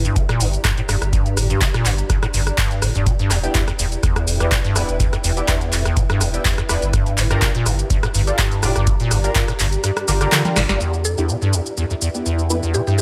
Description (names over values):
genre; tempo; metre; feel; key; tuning
acid house; 124 BPM; 4/4; swing 54% on 16ths; E phrygian; A4 = 440 Hz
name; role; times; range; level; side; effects
acid bass, square; riff; 0.0-13.0 s; E2 to G3; -24 LUFS; equal; lush chorus, cassette tape, sidechain pumping, tape echo
warm sub bass; bass; 0.0-10.8 s; D1 to G1; -24 LUFS; equal; sidechain pumping
booming analog drum machine; drums; 0.0-13.0 s; handclaps, hi-hat, rim click, shaker, snare drum, toms; -24 LUFS; equal; none
granular cloud pad; texture; 0.0-13.0 s; E4 to Bb5; -32 LUFS; equal; built-in reverb, sidechain pumping
electronic kick drum; drums; 0.2-9.5 s; none; -22 LUFS; equal; none
band-passed chord stab; stabs; 3.4-12.7 s; B3 to D5; -28 LUFS; equal; phaser, ensemble chorus, cassette tape, tape echo
mallet-like synth pluck; melody; 11.0-13.0 s; G4 to A4; -29 LUFS; equal; chorus, tape echo
room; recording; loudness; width
light reverb, digital ambience; none; -19 LUFS; mono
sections
0.0-10.8 A section; 10.8-13.0 B section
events
kick drops out 9.8-10.8; drum fill 10.3-10.8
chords
0.0 Gm; 3.1 Em7; 6.9 Gm7; 10.8 Em7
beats
0.16 0.65 | 1.13 1.61 2.10 2.58 | 3.06 3.55 4.03 4.52 | 5.00 5.48 5.97 6.45 | 6.94 7.42 7.90 8.39 | 8.87 9.36 9.84 10.32 | 10.81 11.29 11.77 12.26 | 12.74